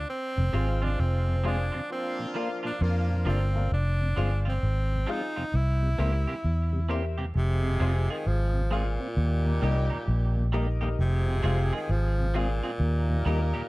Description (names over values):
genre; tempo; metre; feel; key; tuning
reggae; 66 BPM; 4/4; swing 64% on 16ths; F dorian, F minor from 7.3 s; A4 = 439 Hz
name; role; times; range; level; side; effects
edgy tenor saxophone; melody; 0.0-13.7 s; Bb2 to E4; -33 LUFS; right 1 dB; tape echo
vintage muted fingered electric bass; bass; 0.0-13.5 s; F1 to F2; -25 LUFS; equal; none
mellow tonewheel organ; accompaniment; 0.4-13.6 s; Eb2 to F4; -36 LUFS; equal; slow rotary speaker
warm horn section; second line; 0.5-13.7 s; F3 to Bb4; -37 LUFS; equal; tape echo
clean electric guitar; accompaniment; 0.5-13.6 s; E3 to Ab4; -39 LUFS; right 4 dB; wide subtle chorus, tape echo
clear upright piano; stabs; 0.5-13.5 s; Eb4 to F5; -36 LUFS; left 5 dB; none
room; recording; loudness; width
light reverb; dark, warm production; -24 LUFS; side -21 dB against mid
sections
0.0-7.3 A section; 7.3-13.7 B section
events
none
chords
0.1 Fm; 1.9 Bb; 3.7 Fm; 5.5 C7; 7.3 Fm; 9.2 Eb; 11.0 Fm; 12.8 Eb